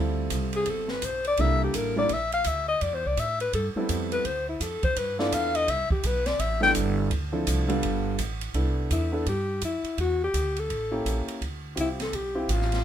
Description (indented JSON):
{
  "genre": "jazz, small-group swing and bop",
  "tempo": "167 BPM",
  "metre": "4/4",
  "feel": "swing 63% on 8ths",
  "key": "C major",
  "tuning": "A4 = 438 Hz",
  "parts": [
    { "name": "warm concert grand piano", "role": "accompaniment", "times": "0.0-12.5 s", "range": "F3 to Bb4", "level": "-29 LUFS", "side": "right 1 dB", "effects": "none" },
    { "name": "upright bass", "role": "bass", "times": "0.0-12.8 s", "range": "G1 to A2", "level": "-29 LUFS", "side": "right 1 dB", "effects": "none" },
    { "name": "open jazz drum kit", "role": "drums", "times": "0.3-12.8 s", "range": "hi-hat, kick drum, ride cymbal, snare drum", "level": "-34 LUFS", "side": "right 2 dB", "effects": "none" },
    { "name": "breathy alto saxophone", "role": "melody", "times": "0.6-6.7, 8.9-12.8 s", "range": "E4 to G5", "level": "-26 LUFS", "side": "left 3 dB", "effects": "none" }
  ],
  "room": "light reverb",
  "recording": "minimal, uncompressed stereo recording",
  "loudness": "-24 LUFS",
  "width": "side -10 dB against mid",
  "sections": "0.0-8.5 A section; 8.5-12.8 B section",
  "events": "alto saxophone solo 0.0-8.5",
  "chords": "0.0 Dm11; 1.4 C13; 2.8 Fmaj9#11; 4.2 Dm; 5.0 G13; 5.7 Cmaj13; 7.1 Dm7; 7.8 G9; 8.5 Cmaj13; 10.0 Em7; 10.7 A7b9; 11.4 Dm11"
}